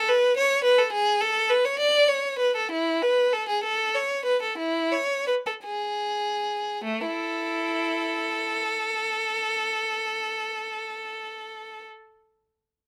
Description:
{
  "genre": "classical, baroque-style suite movement for unaccompanied violin",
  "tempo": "47-72 BPM (dotted quarters)",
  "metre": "12/8",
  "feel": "rubato",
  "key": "A major",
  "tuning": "A4 = 441 Hz",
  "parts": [
    { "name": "clear violin", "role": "solo", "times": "0.0-11.8 s", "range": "A3 to D5", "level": "-25 LUFS", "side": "equal", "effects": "none" }
  ],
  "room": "light reverb",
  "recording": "none",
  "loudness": "-25 LUFS",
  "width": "mono",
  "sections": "0.0-6.9 A section; 6.9-11.5 B section",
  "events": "slowing down 0.4-6.9",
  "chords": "none",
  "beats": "0.08 0.92 1.79 | 2.72 3.63 4.58 5.65 | 6.85 8.00 9.14 10.29"
}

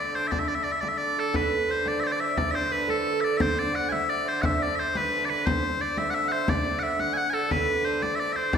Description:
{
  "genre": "medieval dance",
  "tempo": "117 BPM (dotted quarters)",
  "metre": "6/8",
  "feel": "straight",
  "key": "D mixolydian",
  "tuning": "A4 = 437 Hz",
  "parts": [
    { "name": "loud bright bagpipes", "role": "melody", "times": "0.0-8.6 s", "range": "A4 to G#5", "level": "-26 LUFS", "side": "left 1 dB", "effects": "none" },
    { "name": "warm hurdy-gurdy", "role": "drone", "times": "0.0-8.6 s", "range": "D3", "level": "-34 LUFS", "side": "left 1 dB", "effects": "none" },
    { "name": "frame drum", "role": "percussion", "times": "0.1-8.6 s", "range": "none", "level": "-30 LUFS", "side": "left 1 dB", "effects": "none" },
    { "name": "concert harp", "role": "second line", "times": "1.2-8.6 s", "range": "A4 to F#5", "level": "-31 LUFS", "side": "right 6 dB", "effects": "none" }
  ],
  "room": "wet recital hall reverb, RT60 1.4 s",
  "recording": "recorded in a church or concert hall",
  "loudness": "-23 LUFS",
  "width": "side -7 dB against mid",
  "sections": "0.0-1.3 A section; 1.3-8.6 A section",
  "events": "none",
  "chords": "none",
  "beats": "| 0.31 0.83 | 1.34 1.86 | 2.37 2.89 | 3.40 3.92 | 4.43 4.94 | 5.46 5.97 | 6.48 7.00 | 7.51 8.02 | 8.53"
}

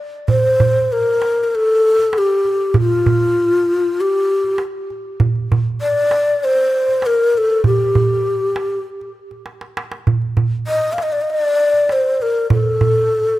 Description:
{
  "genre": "Arabic maqam ensemble",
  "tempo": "98 BPM",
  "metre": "4/4",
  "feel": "straight",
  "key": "unclear",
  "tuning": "A4 = 438 Hz",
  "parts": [
    { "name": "breathy mellow low ney", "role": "melody", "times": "0.3-13.4 s", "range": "F4 to F5", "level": "-15 LUFS", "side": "left 1 dB", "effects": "tape echo" },
    { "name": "darbuka", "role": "percussion", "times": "0.3-13.2 s", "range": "none", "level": "-17 LUFS", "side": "right 3 dB", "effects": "none" }
  ],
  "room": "light reverb",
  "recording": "close, detailed microphones",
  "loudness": "-14 LUFS",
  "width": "side -15 dB against mid",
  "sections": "0.3-13.4 A section",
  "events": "drum fill 9.5-10.1",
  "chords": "none",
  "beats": "| 0.29 0.91 1.52 2.13 | 2.75 3.36 3.97 4.58 | 5.19 5.80 6.41 7.02 | 7.63 8.24 8.85 9.46 | 10.07 10.68 11.29 11.90 | 12.51 13.12"
}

